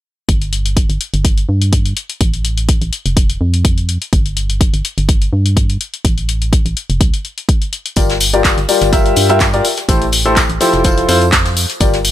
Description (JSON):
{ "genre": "piano house", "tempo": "125 BPM", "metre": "4/4", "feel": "swing 54% on 16ths", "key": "G dorian", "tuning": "A4 = 440 Hz", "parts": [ { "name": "organ-like FM bass", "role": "bass", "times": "0.3-12.1 s", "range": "F1 to G2", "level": "-16 LUFS", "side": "equal", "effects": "sidechain pumping" }, { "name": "electronic kick drum", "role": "drums", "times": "0.3-11.9 s", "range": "none", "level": "-14 LUFS", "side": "equal", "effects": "none" }, { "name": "punchy analog drum machine", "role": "drums", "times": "0.3-12.1 s", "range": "handclaps, hi-hat", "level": "-18 LUFS", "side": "left 3 dB", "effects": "none" }, { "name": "warm grand piano", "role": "riff", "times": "8.0-12.0 s", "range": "F3 to E5", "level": "-14 LUFS", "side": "left 2 dB", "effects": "sidechain pumping, digital delay" }, { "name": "vintage brush drum kit", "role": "drums", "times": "8.0-12.1 s", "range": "hi-hat, snare drum, tambourine", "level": "-24 LUFS", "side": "left 2 dB", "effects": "high-pass filter on hats, high-pass filter on snare, high-pass filter on perc, high-pass filter on room" }, { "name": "tambourine", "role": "percussion", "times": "8.0-12.1 s", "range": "none", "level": "-25 LUFS", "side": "right 6 dB", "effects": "none" } ], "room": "small room ambience", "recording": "none", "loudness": "-12 LUFS", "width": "side -13 dB against mid", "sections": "0.3-12.1 A section", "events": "filter sweep on FM bass 0.3-12.1", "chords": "0.3 N.C.; 8.0 Gm7; 9.6 Am7; 10.8 Fmaj7" }